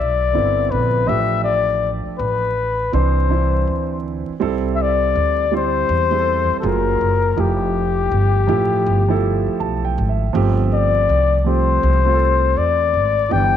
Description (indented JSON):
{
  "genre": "hip hop",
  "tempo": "81 BPM",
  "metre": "4/4",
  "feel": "swing 64% on 16ths",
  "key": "C major",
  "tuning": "A4 = 441 Hz",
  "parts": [
    { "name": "breathy flugelhorn", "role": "melody", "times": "0.0-13.6 s", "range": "G4 to G5", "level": "-19 LUFS", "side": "left 7 dB", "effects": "slapback echo" },
    { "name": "upright bass", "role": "bass", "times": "0.0-13.6 s", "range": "F1 to E2", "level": "-20 LUFS", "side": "equal", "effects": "none" },
    { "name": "dark grand piano", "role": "accompaniment", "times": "0.3-13.6 s", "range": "D3 to A5", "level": "-22 LUFS", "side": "right 8 dB", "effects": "none" }
  ],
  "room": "light reverb, small room ambience",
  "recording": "1960s-style stereo with parts hard left and right, vinyl crackle",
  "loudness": "-15 LUFS",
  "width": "side -10 dB against mid",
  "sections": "0.0-4.4 A section; 4.4-13.6 B section",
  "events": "grand piano fill 9.2-10.3",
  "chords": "0.0 Cmaj9; 1.1 F69/A; 2.9 Cadd9; 4.4 C6; 6.6 F#maj9; 7.4 Fmaj9; 10.3 G9sus4"
}